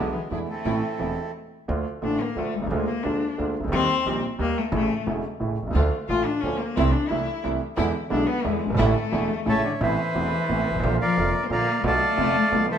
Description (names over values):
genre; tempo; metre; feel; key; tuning
tango; 177 BPM; 3/4; rubato; unclear; A4 = 441 Hz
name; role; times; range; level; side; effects
bandoneon; melody; 0.0-1.3, 9.5-12.8 s; G#3 to C6; -25 LUFS; right 1 dB; none
warm cello; second line; 0.0-12.8 s; D3 to F4; -27 LUFS; left 5 dB; none
clear grand piano; accompaniment; 0.0-12.7 s; E1 to G4; -26 LUFS; right 2 dB; none
rich studio string section; stabs; 0.0-1.1, 5.7-9.6 s; G#3 to F4; -34 LUFS; right 3 dB; none
upright bass; bass; 0.0-12.7 s; E1 to E2; -29 LUFS; right 1 dB; none
room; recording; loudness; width
moderate large studio reverb, RT60 1.3 s; minimal, uncompressed stereo recording; -22 LUFS; side -8 dB against mid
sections
0.0-1.7 A section; 1.7-9.8 B section; 9.8-12.8 C section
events
stop 1.3-1.7; cello solo 1.7-9.8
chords
0.0 E7; 0.6 Am; 1.7 Dm; 2.7 Bb7/D; 3.7 Eb; 4.7 A; 5.7 Dm; 6.8 Am/C; 7.8 E7; 8.8 Asus4; 9.5 A; 9.8 Amadd9; 10.8 Bb; 11.8 Bm7b5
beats
0.31 | 0.65 0.99 1.34 | 1.69 2.03 2.37 | 2.71 3.05 3.38 | 3.72 4.05 4.39 | 4.72 5.06 5.40 | 5.74 6.08 6.42 | 6.76 7.10 7.43 | 7.77 8.10 8.44 | 8.78 9.12 9.46 | 9.81 10.15 10.49 | 10.83 11.17 11.50 | 11.84 12.18 12.52